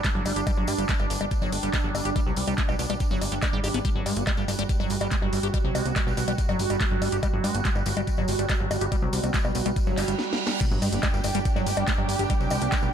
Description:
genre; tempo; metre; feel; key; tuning
psychedelic trance; 142 BPM; 4/4; straight; G major; A4 = 440 Hz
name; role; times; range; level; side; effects
evolving wavetable pad; sustained chords; 0.0-12.9 s; G3 to F#4; -31 LUFS; right 3 dB; chorus, built-in reverb, sidechain pumping
liquid acid bass; riff; 0.0-12.9 s; F#3 to G4; -31 LUFS; moving between left 4 dB and right 4 dB; phaser, auto-pan, sidechain pumping, tape echo
electronic kick drum; drums; 0.0-12.8 s; none; -26 LUFS; equal; none
techno drum kit; drums; 0.0-12.8 s; bongos, crash cymbal, handclaps, hi-hat, snare drum; -31 LUFS; left 1 dB; none
tambourine; percussion; 0.0-12.9 s; none; -40 LUFS; left 5 dB; none
plucky analog bass; bass; 0.2-12.9 s; G1 to G2; -29 LUFS; equal; none
reverse cymbal and sub drop; sound effects; 10.0-12.3 s; none; -34 LUFS; right 3 dB; none
warm symphonic string section; texture; 10.6-12.9 s; D4 to G5; -31 LUFS; right 3 dB; sidechain pumping
room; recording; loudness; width
light reverb; none; -23 LUFS; side -8 dB against mid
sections
0.0-10.6 A section; 10.6-12.9 B section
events
reverse cymbal 10.0-10.6; drum fill 10.2-10.6; drop 10.6-12.9; impact 10.6-12.3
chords
0.0 G5

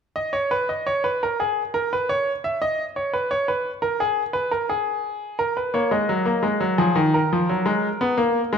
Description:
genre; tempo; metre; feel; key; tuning
classical, baroque-style two-part invention for grand piano; 86 BPM; 4/4; straight; unclear; A4 = 440 Hz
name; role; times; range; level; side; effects
bright grand piano; solo; 0.2-8.6 s; Eb3 to E5; -20 LUFS; equal; none
room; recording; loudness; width
wet recital hall reverb, RT60 1.5 s; dark, warm production; -20 LUFS; side -7 dB against mid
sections
0.0-8.6 A section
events
none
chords
0.0 N.C.; 5.4 D#m; 6.8 Fm7

